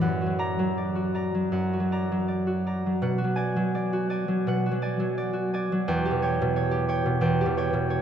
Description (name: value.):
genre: classical, solo harp piece.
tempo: 79-91 BPM.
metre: 4/4.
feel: rubato.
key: B minor.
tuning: A4 = 441 Hz.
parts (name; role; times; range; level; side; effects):
concert harp; solo; 0.0-8.0 s; E2 to A#5; -24 LUFS; right 1 dB; none.
room: wet cathedral reverb, RT60 5.4 s.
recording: dark, warm production.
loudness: -24 LUFS.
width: side -8 dB against mid.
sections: 0.0-8.0 A section.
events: none.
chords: 0.0 F#aug; 3.0 Bm6; 5.9 Em6.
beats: | 0.04 0.79 1.54 2.29 | 3.03 3.76 4.47 5.19 | 5.88 6.55 7.22 7.91.